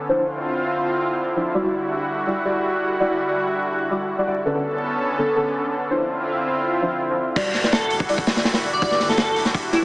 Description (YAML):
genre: drum and bass, jungle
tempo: 165 BPM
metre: 4/4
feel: straight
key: unclear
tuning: A4 = 441 Hz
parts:
  - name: lush unison pad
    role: sustained chords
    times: 0.0-9.8 s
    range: D3 to A4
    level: -23 LUFS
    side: equal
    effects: chorus
  - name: deep mellow chord stab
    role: stabs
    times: 0.0-9.8 s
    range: D3 to D5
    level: -24 LUFS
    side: equal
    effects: chorus, phaser, cassette tape, dub echo
  - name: soft dub sub bass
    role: bass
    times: 7.4-9.8 s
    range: E1 to G1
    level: -40 LUFS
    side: equal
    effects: none
  - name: crunchy breakbeat drum kit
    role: drums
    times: 7.4-9.8 s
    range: crash cymbal, hi-hat, kick drum, snare drum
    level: -21 LUFS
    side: equal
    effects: none
  - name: airy dreamy lead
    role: melody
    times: 7.7-9.8 s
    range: E4 to D5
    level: -22 LUFS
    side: equal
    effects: chorus, cassette tape, dub echo
room: wet plate reverb, RT60 1.6 s, small room ambience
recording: heavily compressed radio sound, vinyl crackle, small speaker sound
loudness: -19 LUFS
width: side -23 dB against mid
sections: 0.0-7.4 A section; 7.4-9.8 B section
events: drop 7.4-9.8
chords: 0.1 Dm9; 1.5 Em9; 4.5 Bm9; 5.9 Dm9; 7.4 Em9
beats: | 0.09 0.46 0.82 1.18 | 1.55 1.91 2.27 2.64 | 3.00 3.36 3.73 4.09 | 4.46 4.82 5.18 5.55 | 5.91 6.27 6.64 7.00 | 7.36 7.73 8.09 8.46 | 8.82 9.18 9.55